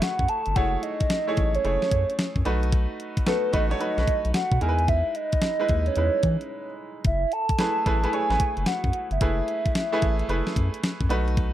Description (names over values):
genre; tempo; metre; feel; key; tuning
R&B, new jack swing; 111 BPM; 4/4; swing 64% on 16ths; F# dorian; A4 = 440 Hz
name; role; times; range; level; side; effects
hollow clarinet-like synth lead; melody; 0.0-11.1 s; B4 to A5; -26 LUFS; right 1 dB; chorus, slapback echo
bright grand piano; accompaniment; 0.0-11.5 s; G#3 to C#5; -30 LUFS; right 3 dB; none
crisp 8-bit digital drum machine; drums; 0.0-11.5 s; hi-hat, kick drum, snare drum; -26 LUFS; left 1 dB; none
round analog bass; bass; 0.2-11.5 s; F#1 to E3; -26 LUFS; left 1 dB; none
room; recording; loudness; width
little or no reverb; dry, close 1970s-style studio recording; -22 LUFS; side -12 dB against mid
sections
0.0-11.5 A section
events
break 6.5-7.0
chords
0.0 F#m11; 2.5 B7; 4.6 Emaj7; 7.0 F#m11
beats
0.02 | 0.56 1.10 1.64 2.18 | 2.72 3.27 3.81 4.35 | 4.89 5.43 5.97 6.51 | 7.05 7.59 8.13 8.67 | 9.21 9.75 10.29 10.83 | 11.37